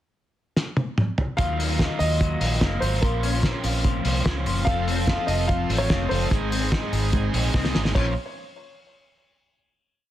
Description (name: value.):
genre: jangly indie pop.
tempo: 146 BPM.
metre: 4/4.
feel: straight.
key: Bb minor.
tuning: A4 = 440 Hz.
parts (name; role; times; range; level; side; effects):
cloth-damped thuddy drum kit; drums; 0.6-8.1 s; crash cymbal, hi-hat, kick drum, snare drum, toms; -24 LUFS; equal; none.
warm upright piano; melody; 1.4-8.1 s; Bb4 to F5; -29 LUFS; equal; digital delay.
crunchy overdriven guitar; accompaniment; 1.4-8.1 s; Ab2 to C5; -31 LUFS; right 6 dB; none.
twelve-string electric guitar; arpeggios; 1.4-8.1 s; F2 to A4; -29 LUFS; left 7 dB; phaser.
vintage muted fingered electric bass; bass; 1.4-8.1 s; F1 to Eb2; -26 LUFS; equal; none.
overdriven combo organ; accompaniment; 4.7-8.1 s; Db4 to Eb5; -34 LUFS; right 6 dB; none.
room: light reverb, small room ambience.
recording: dense, heavily limited modern master.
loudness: -21 LUFS.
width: side -13 dB against mid.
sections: 0.0-1.4 pickup bar; 1.4-8.0 pre-chorus; 8.0-9.6 final chord.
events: drum fill 0.6-1.4, 7.5-8.0.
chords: 0.0 N.C.; 1.4 Ebmadd9; 3.0 Bbmadd9; 4.7 F; 6.3 Ab; 8.0 Bbmadd9.